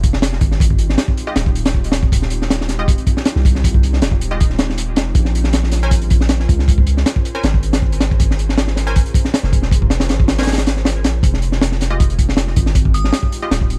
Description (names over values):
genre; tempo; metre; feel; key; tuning
drum and bass, jungle; 158 BPM; 4/4; swing 53% on 16ths; F minor; A4 = 435 Hz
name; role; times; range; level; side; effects
long sustained 808-style bass; bass; 0.0-13.8 s; Eb1 to Db2; -20 LUFS; equal; none
crunchy breakbeat drum kit; drums; 0.0-13.8 s; hi-hat, kick drum, snare drum; -17 LUFS; equal; none
filtered dub chord stab; stabs; 1.3-13.5 s; Ab3 to Ab5; -30 LUFS; equal; chorus, dub echo
glassy synth bell; melody; 12.9-13.2 s; Eb6; -30 LUFS; equal; chorus, phaser, dub echo
room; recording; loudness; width
studio reverb; vinyl crackle; -16 LUFS; mono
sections
0.0-13.8 A section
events
none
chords
0.0 Fm9; 5.2 Bbm9; 11.2 Fm9